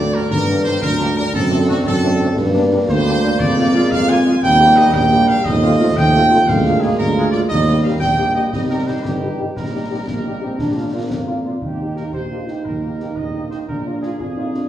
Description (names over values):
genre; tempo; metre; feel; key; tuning
military-style march for wind band; 117 BPM (dotted quarters); 6/8; straight; Eb major from 3.4 s; A4 = 437 Hz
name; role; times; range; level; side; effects
clear trumpet section; melody; 0.0-14.7 s; F#4 to Ab5; -19 LUFS; right 1 dB; none
warm French horn section; accompaniment; 0.0-14.6 s; G3 to G4; -24 LUFS; left 2 dB; none
dark trombone section; sustained chords; 0.0-11.5 s; D3 to Eb4; -22 LUFS; right 2 dB; none
mellow tuba; bass; 0.0-14.6 s; G1 to G2; -19 LUFS; right 1 dB; none
concert snare drum, concert bass drum and clash cymbals; drums; 0.3-14.7 s; none; -25 LUFS; left 1 dB; none
warm euphonium; second line; 11.6-14.7 s; D4 to G4; -26 LUFS; right 3 dB; none
room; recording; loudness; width
wet recital hall reverb, RT60 1.6 s; recorded in a church or concert hall, small room ambience; -14 LUFS; side -12 dB against mid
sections
0.0-11.6 A section; 11.6-14.7 B section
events
none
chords
0.0 Gm; 1.3 D7/F#; 2.4 Gm; 3.4 Bb7/F; 4.4 Eb; 5.5 F7/Eb; 6.5 Bb7/D; 7.5 Eb; 8.5 Cm; 9.6 Eb/Bb; 10.6 Bb; 11.6 Eb; 13.7 Bb7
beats
| 0.32 0.83 | 1.34 1.85 | 2.37 2.88 | 3.40 3.91 | 4.42 4.94 | 5.45 5.96 | 6.48 6.99 | 7.50 8.02 | 8.53 9.05 | 9.56 10.08 | 10.59 11.11 | 11.62 12.14 | 12.65 13.17 | 13.68 14.20